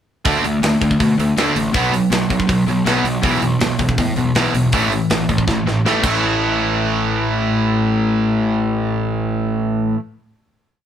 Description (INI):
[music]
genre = punk rock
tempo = 161 BPM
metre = 4/4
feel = straight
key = unclear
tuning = A4 = 440 Hz
[part]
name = tight metal drum kit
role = drums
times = 0.2-6.1 s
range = crash cymbal, hi-hat, kick drum, snare drum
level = -22 LUFS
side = equal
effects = none
[part]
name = cranked stack guitar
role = riff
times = 0.3-10.0 s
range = E2 to D4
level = -18 LUFS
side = right 3 dB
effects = overdrive
[part]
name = crunchy overdriven guitar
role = riff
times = 0.3-10.0 s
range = E2 to D4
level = -21 LUFS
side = left 5 dB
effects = none
[part]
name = fuzz picked electric bass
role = bass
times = 0.3-9.9 s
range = A1 to B2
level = -24 LUFS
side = left 1 dB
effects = overdrive
[sound]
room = light reverb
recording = band playing live in one room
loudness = -15 LUFS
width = side -9 dB against mid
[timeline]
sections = 0.3-6.2 verse; 6.2-9.2 final hit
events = drum fill 5.5-6.2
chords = 0.3 D5; 1.7 B5; 3.2 E5/B; 4.7 A5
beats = | 0.26 0.63 1.00 1.37 | 1.75 2.12 2.49 2.86 | 3.24 3.61 3.98 4.36 | 4.73 5.10 5.47 5.85 | 6.22 6.59 6.97 7.34 | 7.71 8.09 8.46 8.83